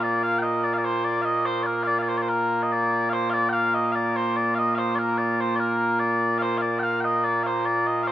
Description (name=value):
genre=scottish traditional, Scottish pipe music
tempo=73 BPM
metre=2/4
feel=straight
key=Bb major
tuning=A4 = 440 Hz
part: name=mellow small bagpipes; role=solo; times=0.0-8.1 s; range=Bb2 to G5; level=-21 LUFS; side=equal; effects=none
room=moderate lush hall reverb, RT60 2.7 s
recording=rough home demo mix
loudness=-21 LUFS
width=side -12 dB against mid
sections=0.0-8.1 A section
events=none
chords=none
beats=0.63 | 1.46 2.28 | 3.10 3.92 | 4.74 5.56 | 6.39 7.21 | 8.03